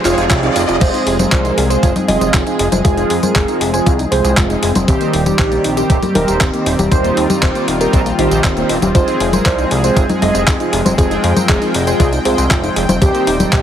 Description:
italo disco; 118 BPM; 4/4; straight; A4 = 440 Hz
wide unison lead; melody; 0.0-13.6 s; F4 to Eb5; -20 LUFS; equal; ping-pong delay
warm analog pad; sustained chords; 0.0-13.6 s; Eb3 to G5; -20 LUFS; left 1 dB; chorus
soft round pluck; arpeggios; 0.0-13.6 s; Bb3 to F5; -23 LUFS; left 2 dB; chorus, tape echo
mellow synth brass; stabs; 0.0-13.6 s; Eb3 to D5; -20 LUFS; right 4 dB; chorus
chorused synth bass; bass; 0.0-13.6 s; Eb1 to F2; -19 LUFS; equal
riser; sound effects; 0.0-0.8 s; -22 LUFS; right 2 dB
clean 12-bit digital drum machine; drums; 0.1-13.6 s; congas, crash cymbal, handclaps, hi-hat, tambourine; -18 LUFS; left 1 dB; high-pass filter on hats, high-pass filter on perc, high-pass filter on snare, high-pass filter on cymbals
electronic kick drum; drums; 0.3-13.6 s; -15 LUFS; equal
light reverb; heavily compressed radio sound; -11 LUFS; side -10 dB against mid
0.8-13.6 A section
riser 0.0-0.8
0.0 Fm; 4.9 Cm/Eb; 8.9 Fm; 13.0 Cm/Eb

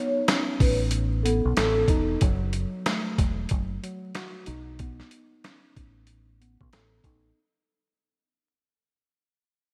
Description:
hip hop, boom-bap hip-hop; 93 BPM; 4/4; swing 62% on 16ths; A4 = 440 Hz
vibraphone with soft mallets; melody; 0.0-1.9 s; A4 to C#5; -32 LUFS; equal; high-pass filter, low-pass filter, delay
tine electric piano; accompaniment; 0.0-7.4 s; F#3 to A4; -33 LUFS; equal; cassette tape, high-pass filter, low-pass filter
boom bap sampler-style drum kit; drums; 0.3-7.2 s; hi-hat, kick drum, snare drum; -28 LUFS; equal; gated reverb
deep dub fingered electric bass; bass; 0.6-7.3 s; E1 to B1; -30 LUFS; equal
light reverb, digital ambience; bright 1980s-style digital production, vinyl crackle; -25 LUFS; mono
0.0-7.4 A section
fade-out 0.0-7.4; filter sweep 0.0-7.4
0.0 B9; 2.2 F#m; 4.5 B9

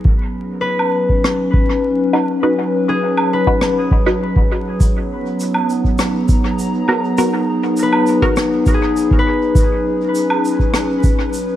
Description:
ambient dub; 101 BPM; 4/4; straight; A4 = 439 Hz
warbly tape-like pad; sustained chords; 0.0-11.6 s; F#3 to A#5; -17 LUFS; left 1 dB; chorus, built-in reverb
concert harp; arpeggios; 0.0-11.6 s; G#4 to B4; -22 LUFS; left 3 dB; dub echo
electronic kick drum; drums; 0.0-11.2 s; -15 LUFS; equal
woodblock, rim click and shaker; drums; 0.8-11.5 s; -23 LUFS; right 2 dB; dub echo
filtered dub chord stab; stabs; 2.1-8.3 s; B3 to B4; -22 LUFS; equal; phaser, cassette tape, dub echo
light reverb; echo-heavy mix, vinyl crackle; -14 LUFS; side -12 dB against mid
0.0-11.6 A section
0.1 C#9sus4; 4.8 G#m9; 9.6 C#9sus4

